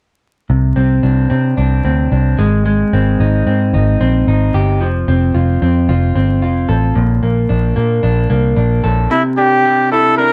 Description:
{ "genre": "indie pop", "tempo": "111 BPM", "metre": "4/4", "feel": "straight", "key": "unclear", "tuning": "A4 = 438 Hz", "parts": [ { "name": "electric guitar through a small old amp", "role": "arpeggios", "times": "0.5-10.3 s", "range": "Bb2 to A4", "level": "-18 LUFS", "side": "equal", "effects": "none" }, { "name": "vintage muted picked electric bass", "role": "bass", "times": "0.5-9.1 s", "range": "F1 to C3", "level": "-16 LUFS", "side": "equal", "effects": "none" }, { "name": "clear trumpet", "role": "melody", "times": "9.1-10.3 s", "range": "E4 to Bb4", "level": "-13 LUFS", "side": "equal", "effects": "none" } ], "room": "moderate club reverb, RT60 0.5 s", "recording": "dark, warm production, vinyl crackle", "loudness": "-14 LUFS", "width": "mono", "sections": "0.5-9.1 A section; 9.1-10.3 B section", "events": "none", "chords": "0.5 Csus2; 2.4 Abmaj7; 4.8 F; 7.0 Bbmaj7; 9.1 Cadd9" }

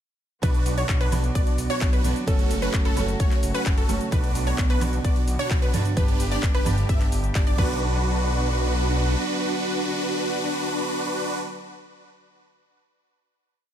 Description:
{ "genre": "EDM, festival progressive house", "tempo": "130 BPM", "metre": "4/4", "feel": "straight", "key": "B minor", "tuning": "A4 = 442 Hz", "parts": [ { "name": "fingerpicked steel-string acoustic guitar", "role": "accompaniment", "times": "0.4-11.4 s", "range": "G2 to D5", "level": "-29 LUFS", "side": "right 3 dB", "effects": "sidechain pumping, digital delay" }, { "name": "muted studio string section", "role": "sustained chords", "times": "0.4-11.4 s", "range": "C#3 to G4", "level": "-35 LUFS", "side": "left 1 dB", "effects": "sidechain pumping" }, { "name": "wide unison pluck", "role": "arpeggios", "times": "0.4-11.4 s", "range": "A4 to E5", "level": "-32 LUFS", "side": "equal", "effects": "sidechain pumping, digital delay" }, { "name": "supersaw chords", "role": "riff", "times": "0.4-11.4 s", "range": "C#4 to E5", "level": "-28 LUFS", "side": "right 1 dB", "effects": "phaser, sidechain pumping, digital delay" }, { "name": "detuned saw bass", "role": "bass", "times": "0.4-9.2 s", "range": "F#1 to B1", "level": "-27 LUFS", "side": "left 1 dB", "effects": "tube saturation, sidechain pumping" }, { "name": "big-room dance drum kit", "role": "drums", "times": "0.4-7.7 s", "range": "crash cymbal, handclaps, hi-hat, shaker, woodblock", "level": "-34 LUFS", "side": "equal", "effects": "overdrive" }, { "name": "electronic kick drum", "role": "drums", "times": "0.4-7.7 s", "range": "none", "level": "-22 LUFS", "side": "left 1 dB", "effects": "none" } ], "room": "little or no reverb", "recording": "none", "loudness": "-21 LUFS", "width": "side -10 dB against mid", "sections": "0.4-7.8 drop; 7.8-11.5 final hit", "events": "drop 0.4-7.8", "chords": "0.4 Bm; 2.3 F#m; 4.1 Bm; 6.0 G; 7.6 Bm" }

